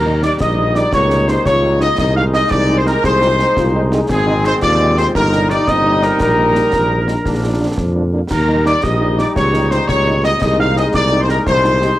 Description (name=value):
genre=military-style march for wind band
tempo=114 BPM (dotted quarters)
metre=6/8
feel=straight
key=Eb major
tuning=A4 = 440 Hz
part: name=warm trumpet section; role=melody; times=0.0-12.0 s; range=Ab4 to F5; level=-17 LUFS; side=left 1 dB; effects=analog delay
part: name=clear woodwind section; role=second line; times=0.0-12.0 s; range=Ab4 to F5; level=-24 LUFS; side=left 2 dB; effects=none
part: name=dark euphonium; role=second line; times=0.0-12.0 s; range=G3 to Ab4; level=-24 LUFS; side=left 3 dB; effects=none
part: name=wooden piccolo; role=second line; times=0.0-12.0 s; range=Ab5 to F6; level=-23 LUFS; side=right 3 dB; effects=none
part: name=warm trombone section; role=sustained chords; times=0.0-12.0 s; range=F3 to Eb4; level=-22 LUFS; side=equal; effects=none
part: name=dark tuba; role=bass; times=0.0-11.9 s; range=G1 to F2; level=-17 LUFS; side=equal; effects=tube saturation
part: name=warm French horn section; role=accompaniment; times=0.1-11.9 s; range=F3 to Eb4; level=-24 LUFS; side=right 2 dB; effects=none
part: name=concert snare drum, concert bass drum and clash cymbals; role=drums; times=0.2-12.0 s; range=none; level=-24 LUFS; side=equal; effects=none
room=studio reverb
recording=dry, gritty hardware recording, cassette tape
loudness=-12 LUFS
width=side -14 dB against mid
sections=0.0-12.0 A section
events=none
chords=0.0 Eb; 0.9 Eb7/Db; 2.0 Ab/C; 4.1 Ab; 5.1 Eb/G; 6.2 Eb/Bb; 7.3 Bb; 8.3 Eb; 9.4 Eb7/Db; 10.4 Ab/C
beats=0.41 | 0.93 1.46 | 1.99 2.51 | 3.04 3.57 | 4.09 4.62 | 5.15 5.67 | 6.20 6.73 | 7.25 7.78 | 8.31 8.84 | 9.36 9.89 | 10.41 10.94 | 11.47